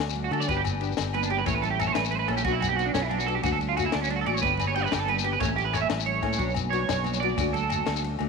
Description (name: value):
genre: highlife guitar band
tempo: 122 BPM (dotted quarters)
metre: 12/8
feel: straight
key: D major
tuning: A4 = 438 Hz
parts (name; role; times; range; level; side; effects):
- combo organ; sustained chords; 0.0-8.3 s; A3 to G4; -38 LUFS; left 10 dB; none
- fingered electric bass; bass; 0.0-8.3 s; G1 to D3; -31 LUFS; equal; none
- compact cocktail drum kit; drums; 0.0-8.3 s; kick drum, ride cymbal, snare drum; -34 LUFS; left 5 dB; none
- agogo bells; percussion; 0.0-8.3 s; none; -36 LUFS; left 13 dB; none
- shekere; percussion; 0.1-8.0 s; none; -35 LUFS; left 6 dB; none
- electric guitar at the edge of break-up; arpeggios; 0.2-8.0 s; C#4 to G5; -27 LUFS; right 10 dB; analog chorus, slapback echo
- congas; percussion; 0.2-8.3 s; none; -36 LUFS; right 14 dB; none
- nylon-string guitar; accompaniment; 0.3-8.3 s; E3 to A4; -35 LUFS; left 12 dB; none
room: moderate echo chamber reverb, RT60 2.0 s, studio ambience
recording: 1960s-style stereo with parts hard left and right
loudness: -24 LUFS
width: side -4 dB against mid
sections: 0.0-8.3 A section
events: clean electric guitar solo 0.0-8.3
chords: 0.5 G; 1.5 A; 2.5 Bm; 3.4 D; 4.4 G; 5.4 A; 6.4 Bm; 7.4 D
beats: 0.48 0.98 | 1.47 1.96 2.46 2.95 | 3.44 3.93 4.42 4.92 | 5.41 5.90 6.39 6.88 | 7.38 7.87